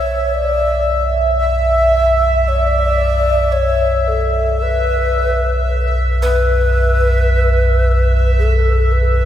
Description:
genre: dark ambient drone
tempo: free time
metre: none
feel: none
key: B minor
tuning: A4 = 440 Hz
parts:
  - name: breathy mellow long shakuhachi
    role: melody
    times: 0.0-9.3 s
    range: A4 to E5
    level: -17 LUFS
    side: left 1 dB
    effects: diffuse ambient delay
  - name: deep rumbling drone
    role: drone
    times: 0.0-9.3 s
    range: B1 to F#2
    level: -16 LUFS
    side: equal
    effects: built-in reverb, phaser, wide subtle chorus
  - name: bubbling stepped-filter texture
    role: texture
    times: 0.0-9.3 s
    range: E5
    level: -20 LUFS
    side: equal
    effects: chorus, built-in reverb
  - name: deep dark ambient pad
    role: sustained chords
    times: 9.2-9.3 s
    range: D4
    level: -50 LUFS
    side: right 1 dB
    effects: none
room: wet cathedral reverb, RT60 5.8 s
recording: in a vast, echoing space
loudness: -13 LUFS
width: side -11 dB against mid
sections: 0.0-9.3 A section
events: filter sweep on synth drone 0.0-9.3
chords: 0.0 Bm

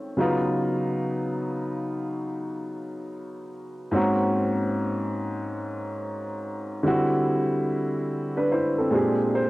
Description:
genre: R&B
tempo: 72 BPM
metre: 4/4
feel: swing 63% on 16ths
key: unclear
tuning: A4 = 441 Hz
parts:
  - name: warm upright piano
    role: solo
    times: 0.0-9.5 s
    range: Ab2 to C5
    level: -24 LUFS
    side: equal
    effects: none
room: light reverb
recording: home recording on cassette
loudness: -24 LUFS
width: side -19 dB against mid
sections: 0.0-9.5 A section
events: none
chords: 0.2 Db9sus4; 3.9 Ab9sus4; 6.8 D9sus4; 8.9 Bb13

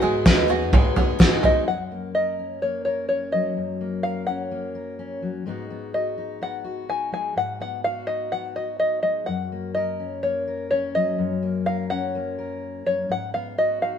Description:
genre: indie folk with a building arrangement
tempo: 126 BPM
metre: 4/4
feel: straight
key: F# major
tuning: A4 = 441 Hz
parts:
  - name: open-back banjo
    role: melody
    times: 0.0-14.0 s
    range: C#5 to G#5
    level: -24 LUFS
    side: left 1 dB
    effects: none
  - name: picked twelve-string acoustic guitar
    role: accompaniment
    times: 0.0-1.7 s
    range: G#2 to G#4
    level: -25 LUFS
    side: left 2 dB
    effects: none
  - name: open-back banjo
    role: arpeggios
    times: 0.0-1.7 s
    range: G#3 to F#4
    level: -26 LUFS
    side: right 4 dB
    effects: none
  - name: upright bass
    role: bass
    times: 0.0-1.4 s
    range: D#2 to G#2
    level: -31 LUFS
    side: equal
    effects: none
  - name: cloth-damped thuddy drum kit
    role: drums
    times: 0.3-1.5 s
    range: kick drum, snare drum, toms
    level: -17 LUFS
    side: equal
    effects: none
  - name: fingerpicked steel-string acoustic guitar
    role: accompaniment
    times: 1.7-14.0 s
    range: F#2 to A#4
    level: -30 LUFS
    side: left 4 dB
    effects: none
room: moderate stone room reverb, RT60 1.3 s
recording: band playing live in one room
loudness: -22 LUFS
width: side -8 dB against mid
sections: 0.0-1.7 A section; 1.7-14.0 B section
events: none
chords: 0.0 G#m7; 1.7 F#; 5.5 G#m7; 9.3 F#; 13.1 G#m7

